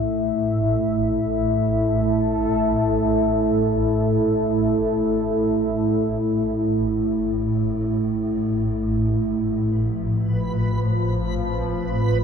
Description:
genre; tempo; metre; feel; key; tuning
dark ambient drone; free time; none; none; unclear; A4 = 440 Hz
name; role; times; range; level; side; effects
sweeping resonant pad; sustained chords; 0.0-12.2 s; F3 to E5; -21 LUFS; equal; chorus
swarming drone; drone; 0.0-12.2 s; A1 to A2; -24 LUFS; equal; built-in reverb
backwards swelling texture; texture; 10.3-12.2 s; B4; -30 LUFS; right 4 dB; built-in reverb
room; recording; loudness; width
wet cathedral reverb, RT60 5.5 s; none; -19 LUFS; side -6 dB against mid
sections
0.0-12.2 A section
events
none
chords
0.0 A5; 9.7 F5

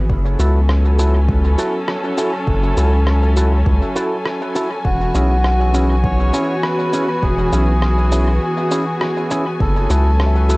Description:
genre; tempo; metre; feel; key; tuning
ambient dub; 101 BPM; 4/4; swing 56% on 16ths; F# minor; A4 = 441 Hz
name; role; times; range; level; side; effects
rich studio string section; sustained chords; 0.0-10.6 s; E3 to G#5; -22 LUFS; equal; cassette tape
round analog bass; bass; 0.0-10.6 s; E1 to C#2; -15 LUFS; equal; none
electronic kick drum; drums; 0.1-9.7 s; none; -20 LUFS; equal; overdrive, studio ambience
electric guitar with an envelope filter; stabs; 0.4-10.6 s; C#4 to A4; -23 LUFS; right 1 dB; tremolo, cassette tape, dub echo
electronic cabasa and rim click; drums; 0.4-10.6 s; none; -28 LUFS; equal; studio ambience, dub echo
melodica; melody; 4.9-10.6 s; F#4 to C#5; -23 LUFS; equal; cassette tape, dub echo
handpan; arpeggios; 10.3-10.6 s; E5; -30 LUFS; left 5 dB; cassette tape
room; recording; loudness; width
light reverb; home recording on cassette; -14 LUFS; side -24 dB against mid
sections
0.0-9.6 A section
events
break 8.4-9.6; band accent 9.0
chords
0.1 F#m7; 4.9 E6; 9.6 F#m7

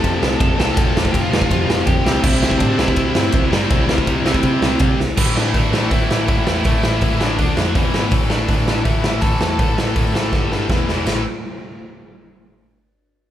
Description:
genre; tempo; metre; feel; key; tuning
punk rock; 163 BPM; 4/4; straight; A minor; A4 = 441 Hz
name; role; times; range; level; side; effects
high-gain lead guitar; melody; 0.0-10.7 s; D4 to A5; -25 LUFS; equal; distortion
distorted electric guitar; riff; 0.0-11.2 s; E2 to D4; -22 LUFS; left 1 dB; overdrive
high-gain distorted guitar; riff; 0.0-8.1 s; E2 to D4; -24 LUFS; right 1 dB; distortion
hollow-body short-scale picked electric bass; bass; 0.0-11.2 s; E1 to C3; -23 LUFS; equal; none
raw garage drum kit; drums; 0.0-11.2 s; crash cymbal, hi-hat, kick drum, ride cymbal, snare drum, splash cymbal; -18 LUFS; equal; none
room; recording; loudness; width
light reverb; band playing live in one room, faint mains hum; -15 LUFS; side -11 dB against mid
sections
0.0-5.2 A section; 5.2-11.1 B section; 11.1-12.5 C section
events
drum fill 5.0, 10.3-11.1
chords
0.0 F; 2.1 C; 5.2 A5; 7.4 D5; 7.7 E5; 8.1 A5; 10.3 G5; 10.7 E5; 11.1 A5

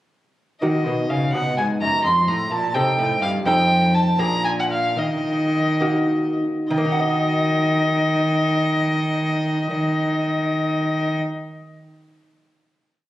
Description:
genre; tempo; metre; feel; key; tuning
classical, baroque-style sonata movement with continuo; 65-86 BPM (dotted quarters); 6/8; straight; Eb minor; A4 = 442 Hz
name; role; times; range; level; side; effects
dark violin; melody; 0.6-11.1 s; Eb5 to C6; -22 LUFS; left 1 dB; none
lute; accompaniment; 0.6-11.9 s; F2 to Eb5; -24 LUFS; equal; none
warm cello; bass; 0.6-11.1 s; F2 to Eb3; -22 LUFS; equal; none
room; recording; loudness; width
moderate recital hall reverb, RT60 1.7 s; recorded on a phone in the room, club reverb; -18 LUFS; side -14 dB against mid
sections
0.6-6.7 A section; 6.7-10.4 final chord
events
slowing down 2.7-6.7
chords
0.6 Ebm; 1.3 B; 2.0 F7; 4.2 Bb7; 5.0 Ebm

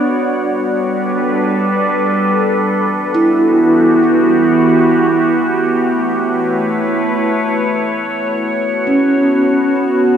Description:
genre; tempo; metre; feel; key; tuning
ambient; free time; none; none; B minor; A4 = 440 Hz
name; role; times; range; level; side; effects
evolving wavetable pad; sustained chords; 0.0-10.2 s; E3 to D5; -14 LUFS; equal; chorus, built-in reverb
vibraphone with soft mallets; arpeggios; 0.0-10.2 s; C#4 to E4; -16 LUFS; right 2 dB; tape echo
pedal harmonium; drone; 8.0-10.2 s; B3 to A4; -31 LUFS; equal; none
room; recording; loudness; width
wet cathedral reverb, RT60 5.2 s; dark, warm production; -12 LUFS; side -8 dB against mid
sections
0.0-8.0 A section; 8.0-10.2 B section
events
none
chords
0.1 G; 2.7 Em7; 5.3 A7; 8.0 B5

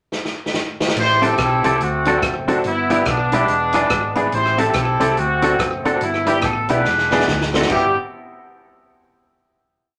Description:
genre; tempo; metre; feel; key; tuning
ska; 142 BPM; 4/4; swing 62% on 8ths; G major; A4 = 440 Hz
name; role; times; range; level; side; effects
swinging big-band drum kit; drums; 0.1-7.8 s; crash cymbal, hi-hat, kick drum, rim click, snare drum; -25 LUFS; equal; slapback echo
warm horn section; melody; 1.0-7.9 s; Ab3 to C5; -21 LUFS; equal; none
hollow-body short-scale fingered electric bass; bass; 1.0-7.9 s; E1 to D2; -28 LUFS; equal; none
semi-hollow electric guitar; accompaniment; 1.2-7.9 s; B3 to A4; -24 LUFS; equal; spring reverb, slapback echo
warm upright piano; stabs; 1.2-7.9 s; B3 to C5; -25 LUFS; equal; none
room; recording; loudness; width
wet studio ambience, RT60 0.4 s; none; -18 LUFS; mono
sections
0.0-1.0 pickup bar; 1.0-7.7 head; 7.7-9.4 final chord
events
drum fill 0.1-1.0, 6.9-7.7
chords
0.0 N.C.; 1.0 Am7; 1.8 D7; 2.6 G6; 3.5 E7; 4.3 Am7; 5.2 D7; 6.0 G6; 6.9 E7; 7.3 D7; 7.7 G6

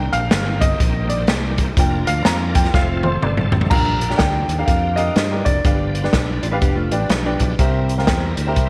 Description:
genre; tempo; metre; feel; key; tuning
uptempo gospel; 124 BPM; 4/4; swing 61% on 8ths; Bb major; A4 = 440 Hz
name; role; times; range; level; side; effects
warm upright piano; accompaniment; 0.0-8.7 s; G2 to Bb5; -25 LUFS; equal; none
bright tonewheel organ; sustained chords; 0.0-8.7 s; D3 to Bb4; -34 LUFS; equal; slow rotary speaker, chorus vibrato
warm studio string section; sustained chords; 0.0-3.7 s; Eb3 to F4; -34 LUFS; equal; none
fingered electric bass; bass; 0.0-8.7 s; F1 to G2; -24 LUFS; equal; none
swinging big-band drum kit; drums; 0.1-8.7 s; crash cymbal, hi-hat, kick drum, snare drum, toms; -21 LUFS; equal; none
warm grand piano; melody; 3.7-6.1 s; D5 to Bb5; -24 LUFS; equal; none
mellow electric guitar; second line; 6.4-7.6 s; F3 to D5; -29 LUFS; equal; none
room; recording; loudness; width
light reverb, small room reverb; none; -18 LUFS; mono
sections
0.0-3.7 A section; 3.7-8.7 B section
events
upright piano solo 0.0-3.7; drum fill 2.7-3.7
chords
0.0 Cm7; 1.8 Bb/F; 2.7 F; 3.7 Bb6; 5.7 G7; 7.6 C7

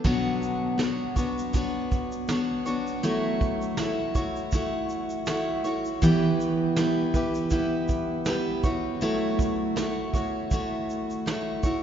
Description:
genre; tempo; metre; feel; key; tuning
acoustic pop; 80 BPM; 4/4; swing 55% on 16ths; unclear; A4 = 440 Hz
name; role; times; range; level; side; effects
picked steel-string acoustic guitar; accompaniment; 0.0-11.8 s; B2 to C#5; -25 LUFS; equal; none
vintage brush drum kit; drums; 0.0-11.8 s; crash cymbal, kick drum, shaker, snare drum; -31 LUFS; right 2 dB; none
room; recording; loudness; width
wet cathedral reverb, RT60 5.4 s; recorded in a church or concert hall, nothing above 7.6 kHz; -24 LUFS; side -9 dB against mid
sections
0.0-11.8 A section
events
none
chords
0.0 Bmadd9; 3.0 F#m7; 6.0 Em; 8.6 F#m7

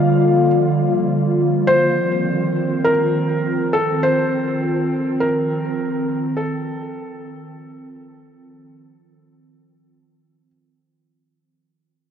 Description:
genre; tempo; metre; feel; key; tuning
ambient; 51 BPM; 4/4; straight; unclear; A4 = 441 Hz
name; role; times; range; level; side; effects
felt-muted upright piano; melody; 0.0-10.5 s; A4 to F5; -21 LUFS; equal; tape echo
warbly tape-like pad; sustained chords; 0.0-11.1 s; D3 to F4; -18 LUFS; equal; chorus, built-in reverb
room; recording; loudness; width
wet huge ambient reverb, RT60 7.8 s; worn, warbling old tape, cassette tape, warbly pitch drift; -16 LUFS; side -8 dB against mid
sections
0.0-11.1 A section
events
fade-out 0.0-11.1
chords
0.0 Gm7; 1.7 F7

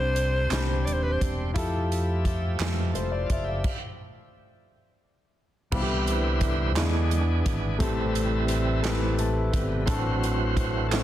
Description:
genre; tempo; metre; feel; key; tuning
slow gospel; 58 BPM (dotted quarters); 6/8; straight; C major; A4 = 438 Hz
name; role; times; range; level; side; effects
growling alto saxophone; melody; 0.0-1.2 s; B4 to D5; -29 LUFS; equal; none
warm concert grand piano; accompaniment; 0.0-11.0 s; A2 to B5; -30 LUFS; left 2 dB; none
bright tonewheel organ; sustained chords; 0.0-11.0 s; C3 to E5; -32 LUFS; right 2 dB; slow rotary speaker, overdrive
fingered electric bass; bass; 0.0-11.0 s; Eb1 to F2; -27 LUFS; equal; none
swinging big-band drum kit; drums; 0.2-11.0 s; crash cymbal, hi-hat, kick drum, snare drum; -30 LUFS; equal; none
group handclap; percussion; 0.5-2.9, 6.8-11.0 s; none; -36 LUFS; right 8 dB; none
room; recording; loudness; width
small room reverb; dense, heavily limited modern master; -23 LUFS; side -12 dB against mid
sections
0.0-5.7 A section; 5.7-11.0 B section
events
stop 3.6-5.7; tonewheel organ solo 5.7-11.0; grand piano fill 8.8-9.9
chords
0.0 Cmaj9; 1.6 Fmaj9; 3.6 N.C.; 5.7 Cmaj7; 6.8 E7; 7.8 Am7; 9.9 D7/A

